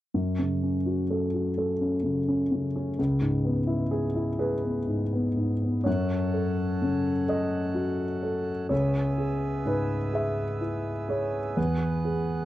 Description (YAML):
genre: neoclassical piano and strings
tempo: 42 BPM (dotted quarters)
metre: 6/8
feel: rubato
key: F# dorian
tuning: A4 = 440 Hz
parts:
  - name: warm grand piano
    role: accompaniment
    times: 0.1-12.4 s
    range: C#2 to E5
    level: -25 LUFS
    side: equal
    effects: none
  - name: pedal harmonium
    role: sustained chords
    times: 5.9-12.4 s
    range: B3 to F#5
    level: -37 LUFS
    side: right 4 dB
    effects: none
room: light reverb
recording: dry, close 1970s-style studio recording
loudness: -25 LUFS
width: side -14 dB against mid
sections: 0.1-5.9 A section; 5.9-12.4 B section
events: none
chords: 0.1 F#m; 3.0 C#m7; 5.9 F#m; 8.7 C#m7; 11.6 Eadd9